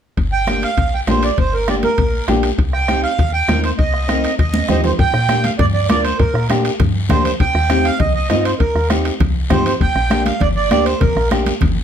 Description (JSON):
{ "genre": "latin, cumbia", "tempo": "199 BPM", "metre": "4/4", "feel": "straight", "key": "unclear", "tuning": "A4 = 440 Hz", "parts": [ { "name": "woody FM bass", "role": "bass", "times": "0.2-11.8 s", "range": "G1 to Bb2", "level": "-20 LUFS", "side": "equal", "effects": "none" }, { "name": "bombo", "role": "percussion", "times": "0.2-11.8 s", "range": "none", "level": "-20 LUFS", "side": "left 2 dB", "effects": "none" }, { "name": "guiro", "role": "percussion", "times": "0.2-11.8 s", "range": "none", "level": "-31 LUFS", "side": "left 6 dB", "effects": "none" }, { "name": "timbales", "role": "percussion", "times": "0.2-11.8 s", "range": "none", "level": "-28 LUFS", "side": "right 6 dB", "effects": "none" }, { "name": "accordion", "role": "melody", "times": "0.3-11.3 s", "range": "Bb4 to G5", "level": "-19 LUFS", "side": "right 5 dB", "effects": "none" }, { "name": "flamenco guitar", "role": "accompaniment", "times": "0.5-11.5 s", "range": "Bb3 to Bb4", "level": "-21 LUFS", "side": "left 3 dB", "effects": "none" }, { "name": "congas", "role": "percussion", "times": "0.5-11.8 s", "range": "none", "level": "-23 LUFS", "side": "right 1 dB", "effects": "none" } ], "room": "light reverb", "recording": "close, detailed microphones", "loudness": "-14 LUFS", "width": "side -8 dB against mid", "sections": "0.2-5.0 A section; 5.0-11.8 B section", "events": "drum fill 4.5-5.0", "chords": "0.2 Gm; 2.6 Cm; 5.0 Gm; 7.4 Cm; 9.8 Gm", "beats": "| 0.17 0.47 0.78 1.08 | 1.38 1.68 1.98 2.28 | 2.58 2.88 3.18 3.48 | 3.79 4.09 4.39 4.69 | 4.99 5.29 5.59 5.89 | 6.19 6.50 6.80 7.10 | 7.40 7.70 8.00 8.30 | 8.60 8.90 9.20 9.51 | 9.81 10.11 10.41 10.71 | 11.01 11.31 11.61" }